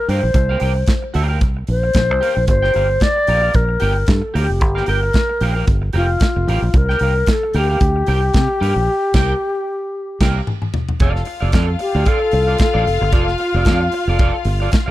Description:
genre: disco.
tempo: 113 BPM.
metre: 4/4.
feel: swing 56% on 16ths.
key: unclear.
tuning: A4 = 440 Hz.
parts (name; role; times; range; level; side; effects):
alto flute; melody; 0.0-14.7 s; F4 to D5; -19 LUFS; left 1 dB; slapback echo.
electric guitar at the edge of break-up; accompaniment; 0.1-14.9 s; G4 to G5; -25 LUFS; right 4 dB; analog chorus.
fingered electric bass; bass; 0.1-14.9 s; F1 to C3; -18 LUFS; equal; none.
modern studio drum kit; drums; 0.1-14.9 s; crash cymbal, hi-hat, kick drum, snare drum, toms; -17 LUFS; equal; none.
clear studio string section; second line; 11.0-14.8 s; F4 to F5; -24 LUFS; left 6 dB; none.
room: small room ambience.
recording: dry, close 1970s-style studio recording.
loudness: -14 LUFS.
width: side -15 dB against mid.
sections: 0.0-11.0 A section; 11.0-14.9 B section.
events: band accent 8.9-11.0; drum fill 9.9-11.0.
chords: 0.0 C7sus4; 2.5 Gm7; 6.7 C7sus4; 11.0 F6.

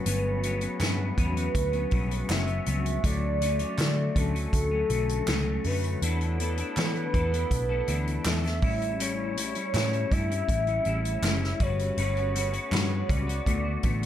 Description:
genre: indie pop, bedroom pop.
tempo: 81 BPM.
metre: 4/4.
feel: straight.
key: D major.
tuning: A4 = 437 Hz.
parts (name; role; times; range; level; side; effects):
warm velvety synth lead; melody; 0.0-14.1 s; A4 to E5; -32 LUFS; equal; wide subtle chorus.
clean electric guitar; accompaniment; 0.0-14.1 s; G2 to B4; -31 LUFS; left 4 dB; ensemble chorus, vibrato effect.
dark woodwind section; sustained chords; 0.0-14.1 s; C#3 to F#4; -40 LUFS; equal; none.
vintage muted picked electric bass; bass; 0.1-14.1 s; F#1 to E3; -29 LUFS; equal; none.
unplugged drum kit; drums; 0.1-14.1 s; hi-hat, kick drum, snare drum; -30 LUFS; equal; none.
group handclap; percussion; 0.8-12.9 s; none; -38 LUFS; right 4 dB; none.
room: light reverb.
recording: none.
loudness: -25 LUFS.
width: side -11 dB against mid.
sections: 0.0-14.1 A section.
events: none.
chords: 0.0 Gmaj9#11; 3.0 Dmaj7; 6.0 E7sus4; 8.6 A7; 11.6 Gmaj9#11; 13.5 D6.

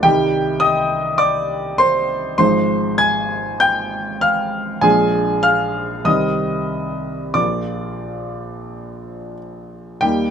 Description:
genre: classical, romantic nocturne for solo piano.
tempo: 44-52 BPM.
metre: 4/4.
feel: rubato.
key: unclear.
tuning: A4 = 442 Hz.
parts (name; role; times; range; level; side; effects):
warm grand piano; solo; 0.0-10.3 s; Ab1 to Ab6; -16 LUFS; equal; none.
room: little or no reverb.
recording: close, detailed microphones.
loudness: -16 LUFS.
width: side -8 dB against mid.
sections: 0.0-10.3 A section.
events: none.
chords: 0.0 Cm; 2.4 Fm7/Ab; 4.8 Bb7; 6.1 Cm; 7.4 Bb.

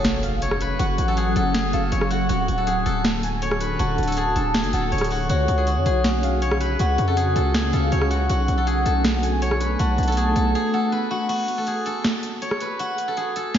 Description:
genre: hip hop, trap.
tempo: 160 BPM.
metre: 4/4.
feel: half-time.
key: unclear.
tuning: A4 = 440 Hz.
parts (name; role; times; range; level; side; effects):
steel-string zither; melody; 0.0-13.6 s; F#4 to C#5; -25 LUFS; equal; low-pass filter, diffuse ambient delay.
warm velvety synth lead; second line; 0.0-10.9 s; C#5 to A5; -29 LUFS; left 1 dB; chorus, diffuse ambient delay.
ethereal airy pad; sustained chords; 0.3-11.3 s; C#3 to G#5; -27 LUFS; left 1 dB; ensemble chorus, built-in reverb, phaser.
distorted 808-style bass; bass; 0.0-10.5 s; D1 to E#2; -23 LUFS; equal; distortion.
booming analog drum machine; drums; 0.0-13.6 s; crash cymbal, hi-hat, rim click, snare drum; -26 LUFS; equal; none.
impact; sound effects; 0.0-0.8 s; none; -36 LUFS; equal; none.
room: wet lush hall reverb, RT60 2.2 s.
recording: dreamy mix soaked in reverb, vinyl crackle, nothing above 7.5 kHz.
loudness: -19 LUFS.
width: side -9 dB against mid.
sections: 0.0-11.3 A section; 11.3-13.6 B section.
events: impact 0.0-0.8; break 10.5-11.3, 11.3-13.6.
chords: 0.0 F#madd9; 2.3 D; 5.3 C#sus4; 8.3 Bm7; 11.3 N.C..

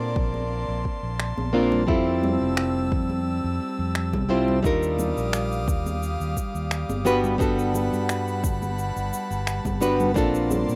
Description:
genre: sunset chillout.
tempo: 87 BPM.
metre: 4/4.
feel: straight.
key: unclear.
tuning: A4 = 440 Hz.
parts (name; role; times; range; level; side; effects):
nylon-string guitar; accompaniment; 0.0-10.8 s; G3 to C5; -27 LUFS; equal; low-pass filter, delay.
airy breathy pad; sustained chords; 0.0-10.8 s; G3 to E6; -34 LUFS; equal; chorus.
fingered electric bass; bass; 0.0-10.8 s; F1 to Bb2; -31 LUFS; equal; tube saturation.
electronic kick drum; drums; 0.2-10.3 s; none; -29 LUFS; equal; none.
congas; percussion; 0.3-10.7 s; none; -34 LUFS; equal; none.
electronic finger snaps and cabasa; drums; 1.2-10.8 s; none; -34 LUFS; equal; none.
room: light reverb.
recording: rough home demo mix.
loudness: -24 LUFS.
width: mono.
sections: 0.0-10.8 A section.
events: none.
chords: 0.0 Bbmaj9; 1.9 Fmaj9; 4.6 Ebmaj9; 7.1 Gmaj9; 10.2 Bbmaj9.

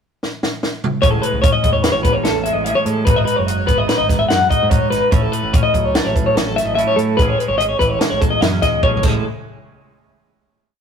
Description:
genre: math rock and midwest emo.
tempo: 146 BPM.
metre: 5/4.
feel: straight.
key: A lydian.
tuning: A4 = 439 Hz.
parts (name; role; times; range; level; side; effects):
compact cocktail drum kit; drums; 0.2-9.1 s; crash cymbal, hi-hat, kick drum, snare drum, toms; -18 LUFS; equal; none.
clean electric guitar; accompaniment; 1.0-9.2 s; E2 to G#4; -23 LUFS; right 4 dB; spring reverb.
clean electric guitar; arpeggios; 1.0-9.2 s; A4 to F#5; -17 LUFS; left 2 dB; tremolo.
growling picked electric bass; bass; 1.0-9.2 s; F#1 to A2; -25 LUFS; right 2 dB; overdrive.
room: moderate stone room reverb, RT60 1.1 s.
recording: rough rehearsal-room recording.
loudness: -14 LUFS.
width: side -7 dB against mid.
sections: 0.0-1.0 pickup bar; 1.0-9.2 A section; 9.2-10.8 final hit.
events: drum fill 0.2-1.0, 8.8-9.2.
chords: 0.0 N.C.; 1.0 Amaj7; 3.1 G#m7; 5.1 F#m7/A; 7.2 Amaj7; 9.2 N.C..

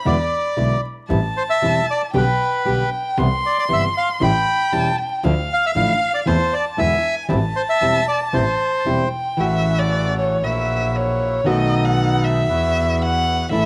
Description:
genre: tango.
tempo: 116 BPM.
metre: 4/4.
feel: rubato.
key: A minor, A major from 9.4 s.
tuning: A4 = 440 Hz.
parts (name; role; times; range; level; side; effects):
warm violin; second line; 0.0-13.7 s; C#5 to C6; -25 LUFS; equal; none.
bandoneon; melody; 0.1-9.1 s; B4 to G5; -22 LUFS; equal; none.
nylon-string guitar; accompaniment; 0.1-13.7 s; B2 to G4; -24 LUFS; equal; none.
rich double bass; bass; 0.1-13.7 s; E1 to E2; -25 LUFS; equal; none.
bandoneon; stabs; 9.4-13.7 s; C#3 to A4; -30 LUFS; equal; none.
room: moderate spring reverb, RT60 1.5 s, studio ambience.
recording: vinyl crackle.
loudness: -19 LUFS.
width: mono.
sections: 0.0-9.4 A section; 9.4-13.7 B section.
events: violin solo 9.4-13.7.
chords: 0.0 E7; 1.1 Am7; 2.1 G/B; 3.2 Cmaj7; 4.2 A7; 5.2 Dmadd9; 6.3 Am/E; 6.8 E7; 7.3 Am7; 9.4 A6; 10.4 F#7/A#; 11.5 B7; 12.5 Esus2.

